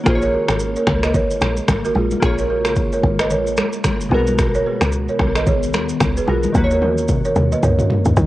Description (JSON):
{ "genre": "afrobeats", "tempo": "111 BPM", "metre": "4/4", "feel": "swing 58% on 16ths", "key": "unclear", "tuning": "A4 = 440 Hz", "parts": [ { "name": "glassy digital keys", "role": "accompaniment", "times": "0.0-8.3 s", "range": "B2 to C#5", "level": "-24 LUFS", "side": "left 1 dB", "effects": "chorus, cassette tape" }, { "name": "glassy FM pad", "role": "sustained chords", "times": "0.0-8.3 s", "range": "C#3 to F#4", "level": "-27 LUFS", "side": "left 2 dB", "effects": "ensemble chorus, built-in reverb, cassette tape" }, { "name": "woody log drum bass", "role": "bass", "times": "0.1-8.3 s", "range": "G#1 to D#3", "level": "-21 LUFS", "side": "equal", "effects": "none" }, { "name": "deep house drum kit", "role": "drums", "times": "0.1-8.3 s", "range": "finger snaps, kick drum, rim click, shaker, toms", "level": "-20 LUFS", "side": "equal", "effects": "overdrive, cassette tape" }, { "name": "balafon", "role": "riff", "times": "0.2-7.8 s", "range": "E#4 to D#5", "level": "-22 LUFS", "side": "right 3 dB", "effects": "cassette tape, analog delay" }, { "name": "congas", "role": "percussion", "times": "0.9-8.3 s", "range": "none", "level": "-26 LUFS", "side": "left 2 dB", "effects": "none" } ], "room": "light reverb, digital ambience", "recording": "home recording on cassette", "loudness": "-15 LUFS", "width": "side -16 dB against mid", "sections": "0.0-8.3 A section", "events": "drum fill 6.5-8.3", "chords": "0.1 A#m7; 4.1 G#m7/B; 6.5 D#m7", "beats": "| 0.06 0.60 1.14 1.68 | 2.23 2.77 3.31 3.85 | 4.39 4.93 5.47 6.01 | 6.55 7.09 7.63 8.17" }